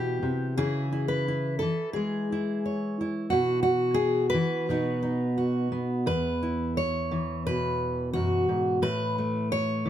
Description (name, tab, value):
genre	folk, solo fingerstyle acoustic guitar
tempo	88 BPM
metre	4/4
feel	straight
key	E major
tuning	A4 = 440 Hz
part	fingerpicked steel-string acoustic guitar	solo	0.0-9.9 s	E2 to C#5	-25 LUFS	equal	none
room	light reverb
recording	none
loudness	-25 LUFS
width	side -11 dB against mid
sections	0.0-9.9 A section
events	none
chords	0.0 C; 0.6 C#m; 3.3 E5/B; 4.7 B; 6.1 Esus2; 8.8 Asus2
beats	| 0.59 1.27 1.95 2.63 | 3.32 4.00 4.69 5.38 | 6.07 6.77 7.46 8.15 | 8.83 9.51